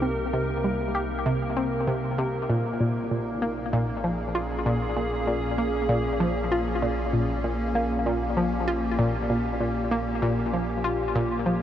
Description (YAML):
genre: ambient, sequencer-driven space music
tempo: 97 BPM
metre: 4/4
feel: straight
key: Bb dorian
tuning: A4 = 440 Hz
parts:
  - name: evolving wavetable pad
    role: sustained chords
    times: 0.0-11.6 s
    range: Bb2 to Bb4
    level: -28 LUFS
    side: equal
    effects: chorus, built-in reverb
  - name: analog pluck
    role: riff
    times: 0.0-11.6 s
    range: Bb2 to G4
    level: -26 LUFS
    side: equal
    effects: chorus, ping-pong delay
  - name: warm sub bass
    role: bass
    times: 0.0-11.6 s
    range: Bb1 to C2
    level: -34 LUFS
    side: equal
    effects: none
room: wet huge ambient reverb, RT60 7.8 s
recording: worn, warbling old tape, cassette tape, warbly pitch drift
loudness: -24 LUFS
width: side -10 dB against mid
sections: 0.0-11.6 A section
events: filter sweep on synth arpeggio sound 0.0-11.6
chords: 0.0 Cm7; 2.5 Bbm7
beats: | 0.02 0.64 1.26 1.88 | 2.49 3.11 3.73 4.35 | 4.97 5.59 6.21 6.82 | 7.44 8.06 8.68 9.30 | 9.92 10.54 11.15